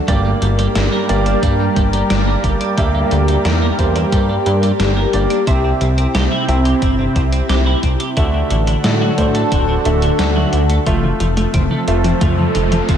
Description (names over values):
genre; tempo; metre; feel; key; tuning
synthwave; 89 BPM; 4/4; straight; G dorian; A4 = 440 Hz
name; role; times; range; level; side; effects
lush unison pad; sustained chords; 0.0-13.0 s; C3 to D5; -19 LUFS; equal; chorus, phaser, sidechain pumping
twelve-string electric guitar; riff; 0.1-13.0 s; D3 to G4; -25 LUFS; right 2 dB; analog chorus, low-pass filter, diffuse ambient delay
warm grand piano; stabs; 0.1-13.0 s; G2 to E5; -22 LUFS; right 3 dB; diffuse ambient delay
fat analog bass; bass; 0.1-13.0 s; D1 to A2; -17 LUFS; equal; sidechain pumping
electronic kick drum; drums; 0.1-13.0 s; none; -19 LUFS; equal; none
gated 80s digital drum machine; drums; 0.1-13.0 s; hi-hat, snare drum, toms; -23 LUFS; equal; gated reverb, gated reverb snare
riser; sound effects; 11.6-13.0 s; none; -26 LUFS; right 2 dB; none
wide unison pluck; arpeggios; 11.0-12.8 s; E3 to A3; -24 LUFS; left 1 dB; none
room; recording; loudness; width
moderate lush hall reverb, RT60 2.5 s; dreamy mix soaked in reverb; -13 LUFS; side -9 dB against mid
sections
0.0-10.9 A section; 10.9-13.0 B section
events
kick drops out 10.2-10.9; drum fill 10.9-13.0; riser 11.6-13.0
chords
0.1 Gm; 5.5 C; 8.2 D; 10.9 Fmaj7